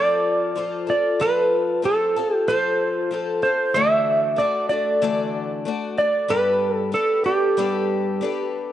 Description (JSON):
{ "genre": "rock", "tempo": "94 BPM", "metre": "4/4", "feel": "straight", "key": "G major", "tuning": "A4 = 440 Hz", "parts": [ { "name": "clean lap steel guitar", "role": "melody", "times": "0.0-8.5 s", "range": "G4 to E5", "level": "-20 LUFS", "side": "right 2 dB", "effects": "none" }, { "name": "picked twelve-string acoustic guitar", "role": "accompaniment", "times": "0.0-8.7 s", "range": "G2 to D5", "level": "-24 LUFS", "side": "left 4 dB", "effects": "none" } ], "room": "moderate plate reverb, RT60 3.2 s", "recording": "dark, warm production, nothing above 10.8 kHz", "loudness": "-19 LUFS", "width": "side -12 dB against mid", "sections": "0.0-8.7 A section", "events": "none", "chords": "0.0 F; 3.8 Dadd9; 6.3 Gadd9", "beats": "0.56 | 1.20 1.84 2.48 3.11 | 3.75 4.39 5.03 5.66 | 6.30 6.94 7.58 8.21" }